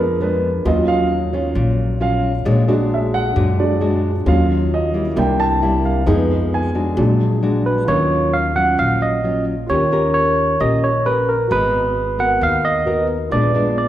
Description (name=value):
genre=bossa nova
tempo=133 BPM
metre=4/4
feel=straight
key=Eb minor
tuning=A4 = 440 Hz
part: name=nylon-string guitar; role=accompaniment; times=0.0-13.9 s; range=Bb2 to Bb4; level=-21 LUFS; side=left 2 dB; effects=none
part: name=warm baby grand piano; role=accompaniment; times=0.0-13.9 s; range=Gb3 to Bb5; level=-21 LUFS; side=right 2 dB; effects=none
part: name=upright bass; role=bass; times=0.0-13.9 s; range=Ab1 to F#2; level=-20 LUFS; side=left 1 dB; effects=none
part: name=barky tine electric piano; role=melody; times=7.7-13.9 s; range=Bb4 to Gb5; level=-17 LUFS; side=right 2 dB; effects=overdrive
room=wet recital hall reverb, RT60 1.4 s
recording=recorded in a church or concert hall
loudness=-15 LUFS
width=side -12 dB against mid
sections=0.0-7.9 A section; 7.9-13.9 B section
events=grand piano solo 0.0-7.9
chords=0.0 Bb7b9; 0.7 Ebm9; 2.5 Bb7alt; 4.3 Ebm9; 5.2 C7; 6.1 Fm7b5; 7.0 Bbaug7; 7.9 Ebm9; 9.7 Eb7; 11.5 Abm9; 13.3 Bb7b9